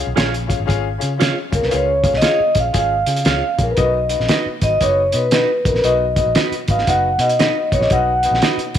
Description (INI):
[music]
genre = uptempo 1960s-style soul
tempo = 116 BPM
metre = 4/4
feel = swing 63% on 8ths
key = unclear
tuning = A4 = 440 Hz
[part]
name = warm grand piano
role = accompaniment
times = 0.0-8.8 s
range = Cb3 to F5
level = -25 LUFS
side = left 10 dB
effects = none
[part]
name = vintage muted fingered electric bass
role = bass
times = 0.1-8.8 s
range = Gb1 to Db3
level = -23 LUFS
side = equal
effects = none
[part]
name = clean electric guitar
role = stabs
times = 0.2-8.6 s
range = Eb4 to F5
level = -24 LUFS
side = right 11 dB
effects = lush chorus
[part]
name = cloth-damped thuddy drum kit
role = drums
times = 0.2-8.8 s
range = hi-hat, kick drum, snare drum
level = -20 LUFS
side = equal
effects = none
[part]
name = vibraphone with soft mallets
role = melody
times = 1.5-8.4 s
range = Bb4 to Gb5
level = -17 LUFS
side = equal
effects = none
[sound]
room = light reverb, studio ambience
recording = 1960s-style stereo with parts hard left and right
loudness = -14 LUFS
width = side -10 dB against mid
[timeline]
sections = 0.0-8.8 A section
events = none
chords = 0.0 Db; 3.8 Cb